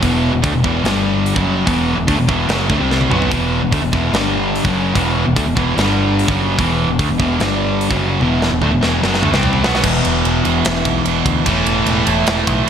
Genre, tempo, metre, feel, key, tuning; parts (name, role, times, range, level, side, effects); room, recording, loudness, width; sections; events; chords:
hard rock; 147 BPM; 4/4; straight; E minor; A4 = 440 Hz
cranked stack guitar; riff; 0.0-12.7 s; E2 to C4; -19 LUFS; right 10 dB; overdrive, wide subtle chorus
sludgy distorted guitar; riff; 0.0-12.7 s; E2 to C4; -18 LUFS; left 5 dB; overdrive
growling picked electric bass; bass; 0.0-12.6 s; E1 to D2; -21 LUFS; equal; overdrive
tight metal drum kit; drums; 0.0-12.6 s; crash cymbal, hi-hat, kick drum, ride cymbal, snare drum, toms; -21 LUFS; equal
moderate lush hall reverb, RT60 1.9 s, studio ambience; bright 1980s-style digital production; -13 LUFS; side -8 dB against mid
0.0-9.8 A section; 9.8-12.7 B section
drum fill 2.9-3.3, 8.2-9.8
0.0 E5; 0.8 G5; 1.4 Em; 4.1 G5; 4.6 E5; 5.8 G5; 6.3 E5; 7.4 G5; 7.9 Em; 9.8 E5; 11.5 A5/E